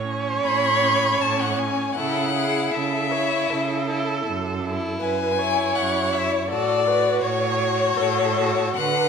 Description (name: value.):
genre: classical, slow romantic movement for string quartet.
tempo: 80 BPM.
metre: 3/4.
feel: uneven beats, rubato.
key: unclear.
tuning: A4 = 441 Hz.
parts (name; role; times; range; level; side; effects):
warm violin; second line; 0.0-8.8 s; C#4 to F#4; -28 LUFS; left 2 dB; none.
rich viola; accompaniment; 0.0-9.1 s; G#4 to C#5; -24 LUFS; right 4 dB; none.
rich cello; bass; 0.0-9.1 s; F#2 to D3; -28 LUFS; right 6 dB; none.
warm violin; melody; 0.4-9.1 s; C#5 to B5; -23 LUFS; left 8 dB; none.
room: wet recital hall reverb, RT60 1.4 s.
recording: minimal, uncompressed stereo recording.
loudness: -20 LUFS.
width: side -6 dB against mid.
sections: 0.0-9.1 A section.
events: none.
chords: 0.0 A; 2.0 A/C#; 4.3 F#m7; 6.5 F#m/A.